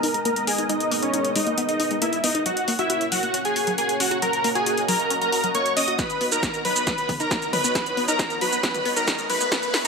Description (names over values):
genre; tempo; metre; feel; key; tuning
uplifting trance; 136 BPM; 4/4; straight; unclear; A4 = 439 Hz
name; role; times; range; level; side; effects
supersaw chords; melody; 0.0-9.9 s; C#4 to D#6; -23 LUFS; equal; sidechain pumping, low-pass filter, digital delay
analog string pad; sustained chords; 0.0-9.9 s; G#3 to F#5; -30 LUFS; equal; ensemble chorus, sidechain pumping
wide unison pluck; arpeggios; 0.0-9.9 s; F#3 to F#4; -30 LUFS; left 3 dB; flanger, sidechain pumping, tape echo
punchy analog drum machine; drums; 0.0-9.9 s; hi-hat, shaker, snare drum, toms; -26 LUFS; left 1 dB; overdrive
electronic kick drum; drums; 6.0-9.6 s; none; -32 LUFS; equal; overdrive
riser; sound effects; 7.5-9.9 s; none; -39 LUFS; right 2 dB; none
room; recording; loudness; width
moderate lush hall reverb, RT60 1.6 s, digital ambience; high-pass filter; -20 LUFS; side -4 dB against mid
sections
0.0-9.9 A section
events
build-up 0.0-9.9; filter sweep on supersaw synth 0.0-9.9; filter sweep on synth arpeggio sound 0.0-9.9; drum fill 6.0-9.9; riser 7.5-9.9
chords
0.0 G#madd9; 2.5 F#; 6.0 Badd9